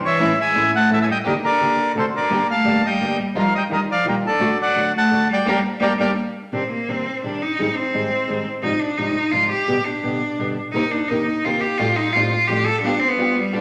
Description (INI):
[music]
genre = tango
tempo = 171 BPM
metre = 3/4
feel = rubato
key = G minor, C minor from 6.5 s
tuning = A4 = 442 Hz
[part]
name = bright cello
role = second line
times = 0.0-13.6 s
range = Bb2 to A4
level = -24 LUFS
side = equal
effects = none
[part]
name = bandoneon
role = melody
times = 0.1-6.1 s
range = G4 to A5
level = -21 LUFS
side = equal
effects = none
[part]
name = nylon-string guitar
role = accompaniment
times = 0.2-13.6 s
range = F2 to Ab4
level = -28 LUFS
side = equal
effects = none
[part]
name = warm studio string section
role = stabs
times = 0.2-6.1, 10.7-13.6 s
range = D3 to Bb4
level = -30 LUFS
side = equal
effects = none
[sound]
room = wet large studio reverb, RT60 1.2 s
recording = none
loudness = -20 LUFS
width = mono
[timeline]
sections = 0.0-6.5 A section; 6.5-13.6 B section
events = band accent 5.5-6.5; cello solo 6.5-13.6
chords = 0.2 A; 1.2 Gm/D; 1.9 D; 2.3 Gm; 3.4 Ebadd9; 4.4 D; 5.5 Gm; 6.5 Cmadd9; 7.6 Abmaj7; 8.6 Fmadd9/Ab; 9.7 G; 10.7 Cm7; 11.8 Fadd9; 12.8 G7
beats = | 0.19 0.54 0.89 | 1.24 1.58 1.94 | 2.29 2.65 3.00 | 3.35 3.70 4.05 | 4.40 4.75 5.10 | 5.45 5.81 6.16 | 6.52 6.88 7.23 | 7.58 7.93 8.28 | 8.62 8.97 9.33 | 9.68 10.03 10.38 | 10.74 11.09 11.45 | 11.80 12.15 12.49 | 12.84 13.19 13.53